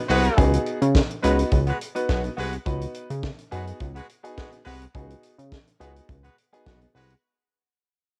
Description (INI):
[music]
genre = early-eighties boogie funk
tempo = 105 BPM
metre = 4/4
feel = straight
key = unclear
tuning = A4 = 440 Hz
[part]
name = warm horn section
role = second line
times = 0.1-7.1 s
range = G#3 to B4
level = -30 LUFS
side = equal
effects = cassette tape
[part]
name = chorused synth bass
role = bass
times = 0.1-7.2 s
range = B1 to C#3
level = -26 LUFS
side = equal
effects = none
[part]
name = tight funk drum kit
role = drums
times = 0.1-7.2 s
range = hi-hat, kick drum, snare drum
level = -27 LUFS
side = equal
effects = cassette tape
[part]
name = clear concert grand piano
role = accompaniment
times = 0.4-6.9 s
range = B3 to B4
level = -31 LUFS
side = equal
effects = cassette tape
[sound]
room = small room ambience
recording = home recording on cassette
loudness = -23 LUFS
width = mono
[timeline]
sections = 0.0-7.2 A section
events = fade-out 0.0-7.2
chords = 0.0 C#9sus4